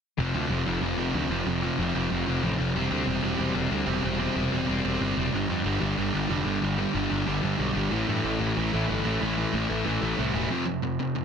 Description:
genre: punk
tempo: 186 BPM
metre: 4/4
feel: straight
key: unclear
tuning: A4 = 439 Hz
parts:
  - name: crunchy overdriven guitar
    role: riff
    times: 0.2-11.2 s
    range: F2 to C4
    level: -29 LUFS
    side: left 11 dB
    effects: none
  - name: sludgy distorted guitar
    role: riff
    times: 0.2-11.2 s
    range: F2 to C4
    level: -28 LUFS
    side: right 9 dB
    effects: overdrive
  - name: fuzz picked electric bass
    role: bass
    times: 0.2-10.5 s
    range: E1 to G2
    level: -30 LUFS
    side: equal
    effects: overdrive
room: light reverb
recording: dense, heavily limited modern master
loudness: -24 LUFS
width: side -7 dB against mid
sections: 0.2-10.5 A section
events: none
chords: 0.2 F5; 2.8 C/E; 5.3 G5; 7.9 A5; 10.5 F5

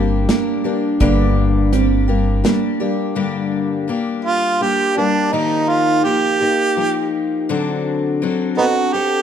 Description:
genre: acoustic folk duo or small band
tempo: 83 BPM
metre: 3/4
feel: straight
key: G minor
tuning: A4 = 440 Hz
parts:
  - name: picked twelve-string acoustic guitar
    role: accompaniment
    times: 0.0-9.2 s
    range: G2 to A4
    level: -19 LUFS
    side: left 5 dB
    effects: none
  - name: felt-muted upright piano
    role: arpeggios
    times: 0.0-3.2 s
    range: Bb3 to D4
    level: -21 LUFS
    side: right 10 dB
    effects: none
  - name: upright bass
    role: bass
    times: 0.0-2.4 s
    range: G1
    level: -18 LUFS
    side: equal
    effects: none
  - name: natural country drum kit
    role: drums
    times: 0.3-2.6 s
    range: hi-hat, kick drum, snare drum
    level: -19 LUFS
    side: equal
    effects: none
  - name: clear harmonica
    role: second line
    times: 4.2-9.2 s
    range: B3 to G4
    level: -16 LUFS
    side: right 4 dB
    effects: none
room: light reverb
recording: dark, warm production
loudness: -15 LUFS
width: side -8 dB against mid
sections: 0.0-3.2 A section; 3.2-9.2 B section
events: harmonica solo 3.2-9.2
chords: 0.0 Gm; 5.3 Ebadd9; 7.5 D7

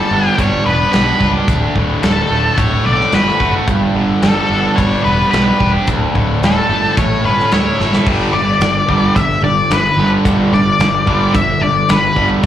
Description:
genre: classic rock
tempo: 109 BPM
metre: 4/4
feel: straight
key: unclear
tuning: A4 = 440 Hz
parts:
  - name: octave-fuzz lead guitar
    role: melody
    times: 0.0-12.3 s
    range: A4 to E5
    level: -16 LUFS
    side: left 2 dB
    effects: wah, distortion, slapback echo, tape echo
  - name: sludgy distorted guitar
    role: riff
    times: 0.0-12.5 s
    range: D2 to A4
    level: -18 LUFS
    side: right 7 dB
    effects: overdrive, slapback echo
  - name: tight distorted guitar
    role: riff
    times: 0.0-12.5 s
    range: D2 to A4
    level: -20 LUFS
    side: left 7 dB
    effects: distortion, slapback echo
  - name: fuzz picked electric bass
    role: bass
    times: 0.1-12.5 s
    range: D1 to D2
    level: -18 LUFS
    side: equal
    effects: overdrive
  - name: big rock drum kit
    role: drums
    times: 0.4-12.5 s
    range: crash cymbal, hi-hat, kick drum, snare drum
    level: -19 LUFS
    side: equal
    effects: none
  - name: bright tonewheel organ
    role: sustained chords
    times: 8.1-12.5 s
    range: A3 to B4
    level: -26 LUFS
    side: right 1 dB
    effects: none
room: moderate club reverb, RT60 0.7 s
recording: live gig heard through the venue's PA, club reverb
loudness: -11 LUFS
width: side -11 dB against mid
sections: 0.0-8.1 A section; 8.1-12.5 B section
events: drum fill 7.8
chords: 0.0 G; 1.5 D; 3.7 G; 5.9 D5; 7.0 A; 8.1 Gadd9

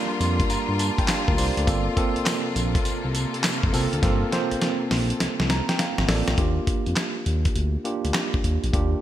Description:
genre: R&B, new jack swing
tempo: 102 BPM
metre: 4/4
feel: swing 66% on 16ths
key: unclear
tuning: A4 = 440 Hz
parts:
  - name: tine electric piano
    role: accompaniment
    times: 0.0-9.0 s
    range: Bb3 to C6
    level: -27 LUFS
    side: right 2 dB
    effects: medium stereo tremolo
  - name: clear studio string section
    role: sustained chords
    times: 0.0-6.3 s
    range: C3 to A4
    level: -31 LUFS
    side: left 3 dB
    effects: none
  - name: smooth gliding synth bass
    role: bass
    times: 0.2-9.0 s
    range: F1 to G2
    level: -25 LUFS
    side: equal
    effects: none
  - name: dusty soul sampler-style drum kit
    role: drums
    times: 0.2-8.9 s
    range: handclaps, hi-hat, kick drum, snare drum, tambourine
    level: -24 LUFS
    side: equal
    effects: gated reverb
room: light reverb, digital ambience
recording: bright 1980s-style digital production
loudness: -21 LUFS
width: side -12 dB against mid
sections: 0.0-6.4 A section; 6.4-9.0 B section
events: tine electric piano fill 0.0-1.7, 5.2-6.4; drum fill 4.0-6.4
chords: 0.0 Ebmaj9 (rootless); 1.7 Gm11; 6.4 Ebmaj9

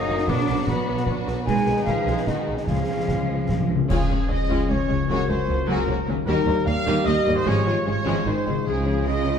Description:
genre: cinematic, heroic adventure film score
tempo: 151 BPM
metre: 3/4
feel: straight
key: Db major from 3.9 s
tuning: A4 = 435 Hz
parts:
  - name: warm symphonic violin section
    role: melody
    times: 0.0-9.4 s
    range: E#4 to F5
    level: -33 LUFS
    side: left 5 dB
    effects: none
  - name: concert flute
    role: second line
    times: 0.0-3.7 s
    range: D#5 to D#6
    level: -29 LUFS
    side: left 1 dB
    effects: none
  - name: warm symphonic violin section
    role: second line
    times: 0.0-9.4 s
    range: G3 to C#5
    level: -30 LUFS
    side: left 3 dB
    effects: none
  - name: clear symphonic viola section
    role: accompaniment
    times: 0.0-9.4 s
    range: D#3 to D#4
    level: -31 LUFS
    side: right 2 dB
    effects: none
  - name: bright trombone section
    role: sustained chords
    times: 0.0-3.7 s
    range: C#3 to B3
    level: -30 LUFS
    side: right 3 dB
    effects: none
  - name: concert harp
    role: arpeggios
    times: 0.0-9.4 s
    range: F#2 to G#5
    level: -30 LUFS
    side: left 9 dB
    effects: none
  - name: rich symphonic cello section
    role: bass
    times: 0.0-9.4 s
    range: C#2 to D#4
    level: -29 LUFS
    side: right 2 dB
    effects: none
  - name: clear symphonic double bass section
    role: bass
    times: 0.1-9.4 s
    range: F#1 to Eb2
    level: -28 LUFS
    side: right 3 dB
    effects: none
  - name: concert snare drum and concert bass drum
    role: drums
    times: 0.2-3.6 s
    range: none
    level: -29 LUFS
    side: right 1 dB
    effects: none
  - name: timpani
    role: percussion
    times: 2.7-5.6, 8.7-9.2 s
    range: C#3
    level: -29 LUFS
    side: equal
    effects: none
  - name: dark French horn section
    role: sustained chords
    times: 3.9-9.4 s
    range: E#3 to G4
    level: -28 LUFS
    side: left 3 dB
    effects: none
  - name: warm trumpet section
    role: stabs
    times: 3.9-9.4 s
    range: G#4 to F5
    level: -28 LUFS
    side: right 2 dB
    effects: none
  - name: clash cymbals and concert bass drum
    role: percussion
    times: 3.9-4.7 s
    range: none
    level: -28 LUFS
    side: equal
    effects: none
room: moderate scoring stage reverb, RT60 1.9 s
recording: dark, warm production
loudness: -20 LUFS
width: side -7 dB against mid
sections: 0.0-3.9 A section; 3.9-9.4 B section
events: timpani fill 2.7-3.9; band accent 3.9-4.3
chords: 0.3 Bm; 1.5 G#m/B; 2.7 C#; 5.1 Gbadd9/Db; 6.3 Eb; 7.5 Db/Ab; 8.3 Ab; 8.7 Db

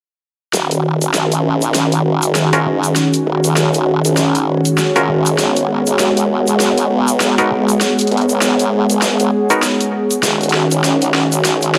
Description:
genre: glitch hop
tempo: 99 BPM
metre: 4/4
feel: swing 59% on 16ths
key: Eb minor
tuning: A4 = 441 Hz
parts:
  - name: warm analog pad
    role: sustained chords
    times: 0.5-11.8 s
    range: Eb3 to Ab4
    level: -18 LUFS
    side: equal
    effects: chorus
  - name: formant-sweep wobble bass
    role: bass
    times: 0.5-11.8 s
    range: Eb1 to Eb2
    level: -21 LUFS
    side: equal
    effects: chorus, tube saturation, high-pass filter
  - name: dubstep drum kit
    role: drums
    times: 0.5-11.8 s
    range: hi-hat, snare drum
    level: -21 LUFS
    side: equal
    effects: high-pass filter on snare, high-pass filter on hats
  - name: egg shaker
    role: percussion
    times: 0.5-11.7 s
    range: none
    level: -27 LUFS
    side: equal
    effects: none
  - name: deep dark ambient pad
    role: texture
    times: 2.3-11.8 s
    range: Ab4 to Gb5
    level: -24 LUFS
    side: equal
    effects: chorus, built-in reverb
  - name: muted clav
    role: stabs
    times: 2.5-10.2 s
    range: Cb4 to Bb4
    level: -21 LUFS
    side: equal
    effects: low-pass filter, dub echo
room: light reverb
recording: dark, warm production, high-pass filter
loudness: -15 LUFS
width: mono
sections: 0.5-11.8 A section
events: build-up 0.5-11.8; drum fill 0.5-11.8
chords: 0.5 Ebm7; 5.4 Abm7; 10.2 Ebm7

